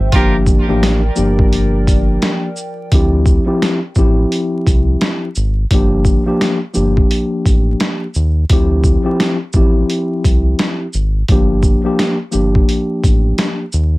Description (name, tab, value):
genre	hip hop, boom-bap hip-hop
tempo	86 BPM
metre	4/4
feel	swing 61% on 16ths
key	D minor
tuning	A4 = 439 Hz
part	dark analog pad	sustained chords	0.0-2.9 s	F3 to G5	-26 LUFS	right 2 dB	chorus, phaser, high-pass filter, low-pass filter
part	round analog bass	bass	0.0-14.0 s	G1 to Eb2	-15 LUFS	equal	none
part	mellow tine electric piano	accompaniment	0.1-13.6 s	F3 to G4	-16 LUFS	left 1 dB	slow stereo tremolo, high-pass filter, low-pass filter
part	boom bap sampler-style drum kit	drums	0.1-13.9 s	hi-hat, kick drum, shaker, snare drum	-15 LUFS	equal	none
room	little or no reverb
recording	vinyl crackle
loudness	-12 LUFS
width	side -20 dB against mid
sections	0.0-2.9 A section; 2.9-14.0 B section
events	none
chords	0.1 Gm7; 2.9 Dm11; 5.7 Gm7; 8.5 Dm11; 11.3 Gm7